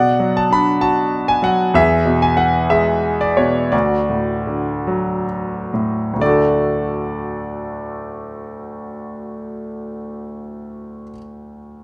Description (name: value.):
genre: classical, lyrical solo piano.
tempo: 41-65 BPM (dotted quarters).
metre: 6/8.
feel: rubato.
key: D lydian.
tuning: A4 = 440 Hz.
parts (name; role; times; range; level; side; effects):
clear concert grand piano; solo; 0.0-11.8 s; D2 to B5; -19 LUFS; equal; none.
room: light reverb.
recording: close, detailed microphones.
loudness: -18 LUFS.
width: mono.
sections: 0.0-6.2 A section; 6.2-11.7 B section.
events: slowing down 1.8-6.2.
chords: 0.0 Bm; 1.8 E; 3.7 D.